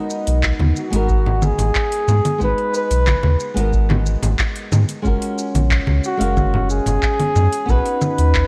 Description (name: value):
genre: sunset chillout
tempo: 91 BPM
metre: 4/4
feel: straight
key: G# dorian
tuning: A4 = 440 Hz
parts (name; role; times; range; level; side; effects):
- flamenco guitar; accompaniment; 0.0-8.5 s; G#3 to E#5; -27 LUFS; equal; digital delay
- smooth R&B drum kit; drums; 0.1-8.5 s; congas, handclaps, hi-hat, shaker; -26 LUFS; equal; small room ambience
- warm sub bass; bass; 0.3-8.4 s; F#1 to G#2; -20 LUFS; equal; none
- electronic kick drum; drums; 0.4-8.5 s; none; -23 LUFS; equal; small room ambience
- congas; percussion; 0.6-7.5 s; none; -26 LUFS; equal; none
- mellow flugelhorn; melody; 0.8-8.5 s; F#4 to B4; -24 LUFS; equal; digital delay
room: light reverb, small room ambience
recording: worn, warbling old tape, cassette tape, warbly pitch drift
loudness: -18 LUFS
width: mono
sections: 0.0-8.5 A section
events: none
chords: 0.0 G#m7; 5.0 F#maj7; 7.7 B